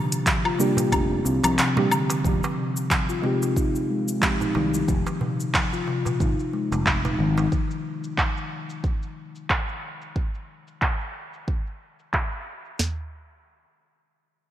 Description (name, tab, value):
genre	organic downtempo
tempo	91 BPM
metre	4/4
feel	swing 56% on 16ths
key	F dorian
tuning	A4 = 440 Hz
part	muted felt-like synth keys	accompaniment	0.0-5.2 s	G3 to G4	-28 LUFS	right 3 dB	chorus, sidechain pumping, digital delay
part	steel tongue drum	arpeggios	0.0-7.5 s	C3 to F4	-26 LUFS	left 2 dB	digital delay
part	afro-pop drum kit	drums	0.1-12.8 s	cabasa, handclaps, hi-hat, woodblock	-27 LUFS	equal	low-pass filter on perc, low-pass filter on hats, low-pass filter on snare
part	afro-pop drum kit	drums	0.3-13.0 s	kick drum, snare drum, toms	-26 LUFS	right 1 dB	none
part	darbuka	percussion	0.4-7.5 s	none	-33 LUFS	right 3 dB	none
part	sustaining fretless electric bass	bass	0.9-7.5 s	F1 to C2	-26 LUFS	equal	lush chorus
room	moderate plate reverb, RT60 2.9 s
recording	bright 1980s-style digital production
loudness	-22 LUFS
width	side -12 dB against mid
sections	0.0-2.2 A section; 2.2-12.8 B section; 12.8-14.5 C section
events	kick drops out 1.6-2.2; filter sweep on drum 2.2-12.8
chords	0.0 Gm; 2.2 Fm7; 7.5 N.C.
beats	0.27 0.93 1.58 | 2.25 2.90 3.56 4.22 | 4.88 5.54 6.20 6.86 | 7.52 8.18 8.84 9.50 | 10.16 10.82 11.47 12.13 | 12.79